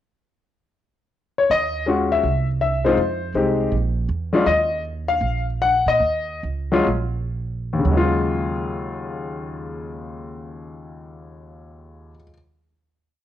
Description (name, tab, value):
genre	jazz piano trio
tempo	114-163 BPM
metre	4/4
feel	swing 65% on 8ths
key	Eb minor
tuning	A4 = 441 Hz
part	clear concert grand piano	melody	1.4-12.3 s	Eb2 to Gb5	-20 LUFS	left 3 dB	plate reverb
part	upright bass	bass	1.5-12.2 s	Bb1 to Bb2	-26 LUFS	right 3 dB	none
room	wet studio reverb, RT60 0.5 s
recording	home recording on cassette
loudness	-19 LUFS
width	side -11 dB against mid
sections	0.0-1.5 pickup bar; 1.5-7.8 A section; 7.8-12.1 final chord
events	slowing down 4.5-7.8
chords	0.0 N.C.; 1.5 Ebm11; 2.2 C; 3.0 Fm9; 3.7 Bb5; 4.5 Eb7(no3); 7.8 Ebm11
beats	| 0.02 0.39 0.76 1.13 | 1.50 1.87 2.24 2.61 | 2.98 3.35 3.72 4.09 | 4.46 4.83 5.21 5.60 | 6.00 6.42 6.87 7.34 | 7.84 8.37 8.90 9.43 | 9.95 10.48 11.01 11.53